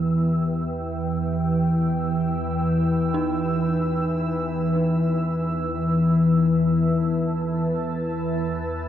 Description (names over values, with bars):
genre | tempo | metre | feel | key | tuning
dark ambient drone | free time | none | none | unclear | A4 = 440 Hz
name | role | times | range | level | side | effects
deep dark ambient pad | sustained chords | 0.0-8.9 s | E3 to E6 | -25 LUFS | right 1 dB | chorus, built-in reverb
organ-like drone | drone | 0.0-8.9 s | E2 to E3 | -23 LUFS | left 1 dB | ensemble chorus, built-in reverb
dark detuned synth bell | arpeggios | 3.1-8.9 s | D#4 | -34 LUFS | right 1 dB | chorus, analog delay
room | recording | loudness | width
wet huge ambient reverb, RT60 7.9 s | dreamy mix soaked in reverb | -20 LUFS | side -10 dB against mid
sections
0.0-8.9 A section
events
fade-out on ambient pad 0.0-8.9; fade-out on synth bell 0.0-8.9; filter sweep on synth drone 0.0-8.9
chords
0.0 Em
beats
free time